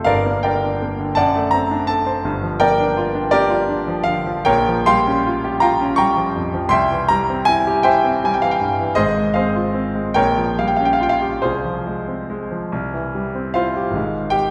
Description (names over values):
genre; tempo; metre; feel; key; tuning
classical, romantic character piece for solo piano; 46-56 BPM (dotted quarters); 6/8; rubato; F minor from 4.5 s; A4 = 440 Hz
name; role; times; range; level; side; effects
clear concert grand piano; solo; 0.0-14.5 s; G1 to Db6; -18 LUFS; equal; none
room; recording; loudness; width
wet scoring stage reverb, RT60 1.5 s; recorded in a church or concert hall; -18 LUFS; mono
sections
0.0-14.0 A section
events
none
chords
0.1 Gm; 1.2 D7/F#; 2.2 Gm7; 4.5 Gm7b5/Bb; 6.7 C; 9.0 Fm/Ab; 10.2 Gm7b5/Bb; 11.4 Fm/C; 12.7 C; 14.0 Fm/Ab